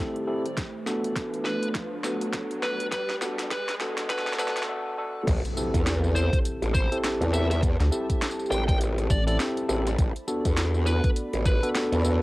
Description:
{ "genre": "glitch hop", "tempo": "102 BPM", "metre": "4/4", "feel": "swing 59% on 16ths", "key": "A dorian", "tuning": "A4 = 440 Hz", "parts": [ { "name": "dark analog pad", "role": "sustained chords", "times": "0.1-12.2 s", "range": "A3 to B5", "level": "-36 LUFS", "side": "right 1 dB", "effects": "chorus, sidechain pumping, cassette tape" }, { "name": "tine electric piano", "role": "stabs", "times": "0.0-12.2 s", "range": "B3 to A4", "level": "-30 LUFS", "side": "equal", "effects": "sidechain pumping, low-pass filter, cassette tape, tape echo" }, { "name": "riser and impact", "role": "sound effects", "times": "0.1-7.6 s", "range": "none", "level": "-37 LUFS", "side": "equal", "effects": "none" }, { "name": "drum and bass drum kit", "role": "drums", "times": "0.2-12.2 s", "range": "crash cymbal, hi-hat, snare drum, tambourine", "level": "-33 LUFS", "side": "equal", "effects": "overdrive" }, { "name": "electronic kick drum", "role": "drums", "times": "0.6-11.6 s", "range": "none", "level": "-25 LUFS", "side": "equal", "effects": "overdrive" }, { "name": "fuzz lead guitar", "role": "melody", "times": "1.4-11.7 s", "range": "B4 to G5", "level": "-33 LUFS", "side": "equal", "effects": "distortion, low-pass filter, tape echo" }, { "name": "growl bass", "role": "bass", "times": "5.3-12.2 s", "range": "A1 to E2", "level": "-25 LUFS", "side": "equal", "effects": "chorus" }, { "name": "rubbery square bass", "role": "bass", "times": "7.8-9.4 s", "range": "A1 to D2", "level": "-23 LUFS", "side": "equal", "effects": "none" } ], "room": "light reverb, digital ambience", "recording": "home recording on cassette, high-pass filter", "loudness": "-24 LUFS", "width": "side -20 dB against mid", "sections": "0.0-5.3 A section; 5.3-12.2 B section", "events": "build-up 0.0-5.3; drum fill 0.0-4.7; filter sweep on tine electric piano 0.0-5.3; filter sweep 0.0-5.3; riser 0.1-4.7; break 4.7-5.3; drop 5.3-12.2; impact 5.3-7.6", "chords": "0.0 Am7; 0.6 Bm7/A; 5.3 Am7; 10.0 Bm7/A" }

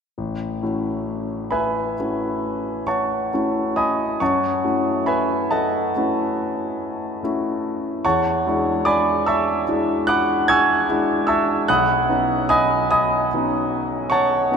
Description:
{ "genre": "classical, impressionist solo piano", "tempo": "44-50 BPM (dotted quarters)", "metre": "9/8", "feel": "rubato", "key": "A lydian", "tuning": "A4 = 441 Hz", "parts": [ { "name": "clear concert grand piano", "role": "solo", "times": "0.2-14.6 s", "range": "A1 to G#6", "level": "-18 LUFS", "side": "equal", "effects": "none" } ], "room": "wet cathedral reverb, RT60 6.1 s", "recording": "in a vast, echoing space", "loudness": "-18 LUFS", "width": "side -6 dB against mid", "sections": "0.2-14.6 A section", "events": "none", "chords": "0.2 A6; 4.2 F#m7; 8.0 E13; 11.7 Badd9" }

